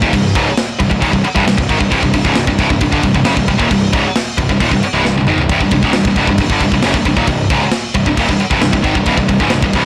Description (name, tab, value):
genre	heavy metal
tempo	134 BPM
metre	4/4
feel	straight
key	C minor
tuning	A4 = 440 Hz
part	heavy high-gain guitar	riff	0.0-9.8 s	C2 to Eb3	-16 LUFS	equal	distortion
part	fuzz picked electric bass	bass	0.0-9.8 s	C1 to Ab1	-22 LUFS	equal	overdrive
part	tight metal drum kit	drums	0.0-9.8 s	crash cymbal, kick drum, snare drum, toms	-19 LUFS	equal	none
room	little or no reverb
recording	blown-out, overdriven recording, overdrive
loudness	-14 LUFS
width	mono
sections	0.0-9.8 A section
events	drum fill 5.0-5.5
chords	0.0 Cm